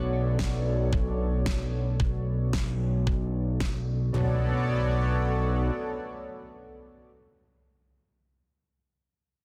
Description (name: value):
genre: synthwave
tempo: 112 BPM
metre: 4/4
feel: straight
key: B minor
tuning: A4 = 440 Hz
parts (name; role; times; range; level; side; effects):
- chorused pulse-width pad; sustained chords; 0.0-7.1 s; B3 to D5; -35 LUFS; equal; sidechain pumping
- fat analog bass; bass; 0.0-5.7 s; B1; -29 LUFS; equal; tube saturation, sidechain pumping
- electronic kick drum; drums; 0.4-3.7 s; none; -31 LUFS; equal; none
- electronic snare drum; drums; 0.4-3.7 s; none; -39 LUFS; equal; overdrive
- impact; sound effects; 4.1-7.1 s; none; -40 LUFS; equal; none
room: light reverb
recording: dense, heavily limited modern master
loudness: -27 LUFS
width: mono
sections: 0.0-4.1 A section; 4.1-8.4 B section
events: filter sweep on analog synth pad 0.0-4.1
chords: 0.0 Bm7